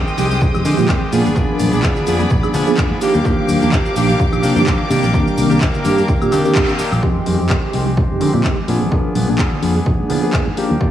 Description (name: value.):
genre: filtered disco house.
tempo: 127 BPM.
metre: 4/4.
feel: swing 55% on 16ths.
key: F dorian.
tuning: A4 = 440 Hz.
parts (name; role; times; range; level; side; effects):
bright symphonic string section; sustained chords; 0.0-7.0 s; Ab3 to Eb6; -23 LUFS; left 1 dB; vintage 12-bit sampler grit, sidechain pumping, low-pass filter.
direct-recorded clean electric guitar; riff; 0.0-10.9 s; Eb3 to Ab4; -24 LUFS; left 2 dB; sidechain pumping, low-pass filter.
house drum kit; drums; 0.1-10.7 s; handclaps, hi-hat, shaker, woodblock; -26 LUFS; left 1 dB; overdrive, sidechain pumping on hats, sidechain pumping on perc.
mellow tine electric piano; accompaniment; 0.2-10.9 s; Eb3 to Bb4; -18 LUFS; right 1 dB; medium stereo tremolo, phaser, sidechain pumping, low-pass filter.
fingered electric bass; bass; 0.2-10.9 s; F1 to D3; -19 LUFS; equal; sidechain pumping, low-pass filter.
tambourine and congas; percussion; 0.2-10.9 s; none; -27 LUFS; equal; none.
electronic kick drum; drums; 0.4-10.9 s; none; -18 LUFS; equal; none.
room: moderate lush hall reverb, RT60 1.6 s.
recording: dreamy mix soaked in reverb, small room ambience.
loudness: -13 LUFS.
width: side -11 dB against mid.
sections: 0.0-7.0 A section; 7.0-10.9 B section.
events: drop 0.0-7.0; band accent 6.6.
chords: 0.0 Fm9; 1.1 Bb7b9; 3.0 Ebmaj9; 4.9 Cm9; 7.0 Fm9; 8.7 Bb7b9.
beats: 0.41 0.89 | 1.36 1.83 2.31 2.78 | 3.25 3.72 4.19 4.67 | 5.14 5.61 6.08 6.56 | 7.03 7.50 7.97 8.45 | 8.92 9.39 9.86 10.34 | 10.81.